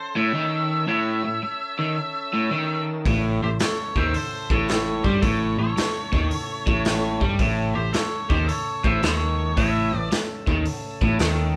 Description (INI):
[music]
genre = blues rock power trio and southern rock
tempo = 111 BPM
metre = 4/4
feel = swing 66% on 8ths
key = A mixolydian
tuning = A4 = 443 Hz
[part]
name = octave-fuzz lead guitar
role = melody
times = 0.0-10.1 s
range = C5 to E5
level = -31 LUFS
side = equal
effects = distortion
[part]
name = lightly driven lead guitar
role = second line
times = 0.0-10.1 s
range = G4 to C#5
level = -36 LUFS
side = equal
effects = none
[part]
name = tonewheel organ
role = sustained chords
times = 0.0-11.6 s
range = A3 to E5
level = -39 LUFS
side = equal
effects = slow rotary speaker
[part]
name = crunchy overdriven guitar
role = riff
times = 0.2-11.6 s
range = A2 to G3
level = -26 LUFS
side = equal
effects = none
[part]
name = vintage muted picked electric bass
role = bass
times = 3.1-11.6 s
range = A1 to G2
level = -29 LUFS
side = equal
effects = none
[part]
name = raw garage drum kit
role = drums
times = 3.1-11.4 s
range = hi-hat, kick drum, snare drum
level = -28 LUFS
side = equal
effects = none
[sound]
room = moderate studio ambience, RT60 0.5 s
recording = band playing live in one room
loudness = -23 LUFS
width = mono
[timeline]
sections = 0.0-11.6 A section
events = none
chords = 0.0 A